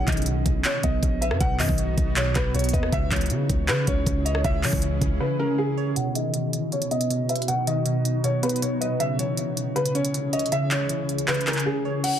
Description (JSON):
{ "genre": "hip hop, trap", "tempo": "158 BPM", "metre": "4/4", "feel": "half-time", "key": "B major", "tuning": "A4 = 445 Hz", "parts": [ { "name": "dark baby grand piano", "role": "melody", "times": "0.0-12.2 s", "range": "G#4 to F#5", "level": "-28 LUFS", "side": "left 1 dB", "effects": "low-pass filter" }, { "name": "glassy wavetable pluck", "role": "accompaniment", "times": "0.0-12.0 s", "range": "B2 to C#5", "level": "-27 LUFS", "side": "right 1 dB", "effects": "chorus, low-pass filter" }, { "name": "granular cloud pad", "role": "sustained chords", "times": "0.0-12.0 s", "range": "B2 to G#4", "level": "-31 LUFS", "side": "equal", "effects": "built-in reverb, low-pass filter" }, { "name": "long sustained 808-style bass", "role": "bass", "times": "0.0-5.2 s", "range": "A#1 to C#3", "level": "-26 LUFS", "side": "equal", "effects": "none" }, { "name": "trap drum kit", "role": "drums", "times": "0.1-12.1 s", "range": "crash cymbal, handclaps, hi-hat, kick drum, rim click", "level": "-26 LUFS", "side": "equal", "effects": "overdrive" } ], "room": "light reverb, digital ambience", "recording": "dense, heavily limited modern master", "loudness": "-21 LUFS", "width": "side -10 dB against mid", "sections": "0.0-6.0 A section; 6.0-12.0 B section", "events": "drums muted 5.2-6.0; filter sweep 6.0-12.0; break 11.7-12.0; kick muted 12.0", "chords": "0.0 B; 2.9 C#m; 6.0 B; 9.0 C#m" }